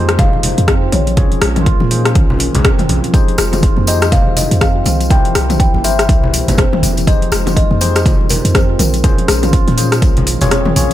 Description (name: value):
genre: afro house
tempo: 122 BPM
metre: 4/4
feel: swing 59% on 16ths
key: F minor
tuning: A4 = 441 Hz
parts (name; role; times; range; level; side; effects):
- kalimba; melody; 0.0-10.9 s; Bb4 to G5; -21 LUFS; left 2 dB; ping-pong delay
- dark analog pad; sustained chords; 0.0-10.9 s; Ab3 to C5; -27 LUFS; right 1 dB; none
- handpan; arpeggios; 0.0-10.9 s; Eb3 to F4; -22 LUFS; right 3 dB; sidechain pumping, ping-pong delay
- tine electric piano; stabs; 0.0-10.9 s; Db4 to Db5; -23 LUFS; left 5 dB; medium stereo tremolo, sidechain pumping, ping-pong delay
- warm 808-style bass; bass; 0.0-10.9 s; F1 to Bb2; -17 LUFS; equal; sidechain pumping
- deep house drum kit; drums; 0.1-10.9 s; hi-hat, rim click, toms; -18 LUFS; left 2 dB; overdrive
- electronic kick drum; drums; 0.2-10.1 s; none; -13 LUFS; equal; overdrive
- congas; percussion; 0.2-10.9 s; none; -21 LUFS; left 1 dB; none
- tambourine; percussion; 3.1-10.9 s; none; -25 LUFS; left 2 dB; none
room: small room ambience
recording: none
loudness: -10 LUFS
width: side -13 dB against mid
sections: 0.0-10.9 A section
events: kick drops out 10.5-10.9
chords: 0.0 Fm7; 1.2 Bbm7; 3.1 Fm7; 5.1 C7; 7.1 Fm7; 9.0 Bbm7